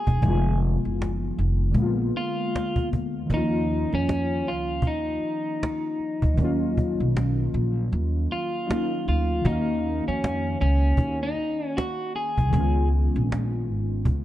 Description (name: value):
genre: lo-fi hip hop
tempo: 78 BPM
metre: 4/4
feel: swing 60% on 16ths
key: Eb minor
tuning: A4 = 440 Hz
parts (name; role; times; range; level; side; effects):
- electric guitar at the edge of break-up; melody; 0.0-12.9 s; Db4 to Ab4; -29 LUFS; equal; low-pass filter, analog delay
- warbly lo-fi synth keys; accompaniment; 0.0-14.2 s; D3 to F5; -28 LUFS; left 2 dB; chorus, low-pass filter
- upright bass; bass; 0.1-14.2 s; Fb1 to F2; -24 LUFS; equal; none
- cajon; drums; 0.1-14.2 s; none; -26 LUFS; equal; none
room: small room ambience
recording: dark, warm production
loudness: -22 LUFS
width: side -14 dB against mid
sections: 0.0-9.5 A section; 9.5-14.2 A section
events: kick muted 7.9-9.5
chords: 0.2 Fm7b5; 1.8 Bb7b9; 3.3 Ebm9; 12.5 Db9